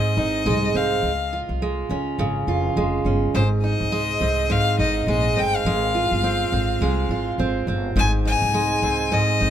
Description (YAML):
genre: pop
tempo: 104 BPM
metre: 4/4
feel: swing 60% on 16ths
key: Ab major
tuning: A4 = 441 Hz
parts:
  - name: clear violin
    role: melody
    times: 0.0-9.5 s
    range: C5 to Ab5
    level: -23 LUFS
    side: left 3 dB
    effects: none
  - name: picked steel-string acoustic guitar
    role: accompaniment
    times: 0.0-9.5 s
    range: Ab2 to F4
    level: -22 LUFS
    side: right 2 dB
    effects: none
  - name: upright bass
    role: bass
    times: 0.2-9.5 s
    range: F1 to Db2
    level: -25 LUFS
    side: left 1 dB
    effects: none
room: light reverb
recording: minimal, uncompressed stereo recording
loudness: -19 LUFS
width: side -10 dB against mid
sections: 0.0-9.5 A section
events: none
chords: 0.0 Ab; 1.0 Db; 3.3 Ab; 5.7 Fm; 8.0 Ab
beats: 0.46 | 1.03 1.61 2.19 2.77 | 3.34 3.92 4.50 5.07 | 5.65 6.23 6.81 7.38 | 7.96 8.54 9.12